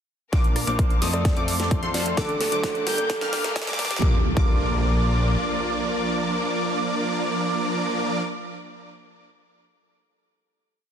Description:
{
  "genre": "EDM, festival progressive house",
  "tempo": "130 BPM",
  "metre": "4/4",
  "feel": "straight",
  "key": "Bb major",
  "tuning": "A4 = 441 Hz",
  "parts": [
    { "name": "bright concert grand piano", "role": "accompaniment", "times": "0.3-8.2 s", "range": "G2 to C5", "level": "-35 LUFS", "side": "left 3 dB", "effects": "sidechain pumping, digital delay" },
    { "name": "rich chamber string section", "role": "sustained chords", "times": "0.3-7.9 s", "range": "Bb3 to D6", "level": "-34 LUFS", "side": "left 5 dB", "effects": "sidechain pumping" },
    { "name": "plucky unison lead", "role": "arpeggios", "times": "0.3-8.2 s", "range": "C6 to G6", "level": "-30 LUFS", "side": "equal", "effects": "lush chorus, cassette tape, sidechain pumping, digital delay" },
    { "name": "supersaw chords", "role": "riff", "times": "0.3-8.2 s", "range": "F3 to G5", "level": "-27 LUFS", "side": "right 1 dB", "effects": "sidechain pumping, low-pass filter, digital delay" },
    { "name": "fat analog bass", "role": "bass", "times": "0.3-5.4 s", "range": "G1 to G2", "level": "-27 LUFS", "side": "equal", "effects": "sidechain pumping" },
    { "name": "big-room dance drum kit", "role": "drums", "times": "0.3-4.1 s", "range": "hi-hat, rim click, snare drum", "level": "-29 LUFS", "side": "equal", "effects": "high-pass filter on snare, high-pass filter on hats, high-pass filter on room" },
    { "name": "electronic kick drum", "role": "drums", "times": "0.3-4.5 s", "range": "none", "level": "-22 LUFS", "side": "equal", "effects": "none" },
    { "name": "riser and impact", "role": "sound effects", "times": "2.1-7.9 s", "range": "none", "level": "-32 LUFS", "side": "equal", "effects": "none" },
    { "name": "kalimba", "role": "melody", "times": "1.1-4.0 s", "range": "G4 to D5", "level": "-31 LUFS", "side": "right 1 dB", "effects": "digital delay" }
  ],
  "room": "moderate lush hall reverb, RT60 1.8 s",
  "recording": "dense, heavily limited modern master, high-pass filter",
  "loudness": "-21 LUFS",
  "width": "side -8 dB against mid",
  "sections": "0.3-4.0 build; 4.0-7.7 final chord",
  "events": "build-up 0.3-4.0; drum fill 0.3-4.0; filter sweep on supersaw synth 0.3-4.0; filter sweep on digital synth lead 0.3-4.0; filter sweep 0.3-4.0",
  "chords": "0.3 Bb; 1.3 F; 2.2 D; 3.1 Gm; 4.0 Bb",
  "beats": "| 0.33 0.79 1.25 1.71 | 2.17 2.64 3.10 3.56 | 4.02 4.48 4.94 5.41 | 5.87 6.33 6.79 7.25"
}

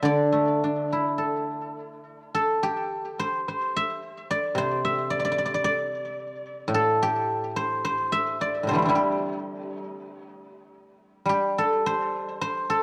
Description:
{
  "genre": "chinese traditional, Chinese solo plucked strings",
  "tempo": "51-56 BPM",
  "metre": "2/4",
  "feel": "rubato",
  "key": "G zhi mode",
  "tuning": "A4 = 440 Hz",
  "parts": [
    { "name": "guzheng", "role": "solo", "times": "0.0-12.8 s", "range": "A2 to E5", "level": "-26 LUFS", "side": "equal", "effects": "tape echo" }
  ],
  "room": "moderate plate reverb, RT60 2.6 s",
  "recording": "worn, warbling old tape, cassette tape, warbly pitch drift",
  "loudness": "-26 LUFS",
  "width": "mono",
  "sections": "0.0-11.3 A section; 11.3-12.8 B section",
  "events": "none",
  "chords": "none",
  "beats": "| 0.07 1.20 | 2.35 3.46 | 4.56 5.63 | 6.71 7.80 | 8.92 10.09 | 11.27 12.41"
}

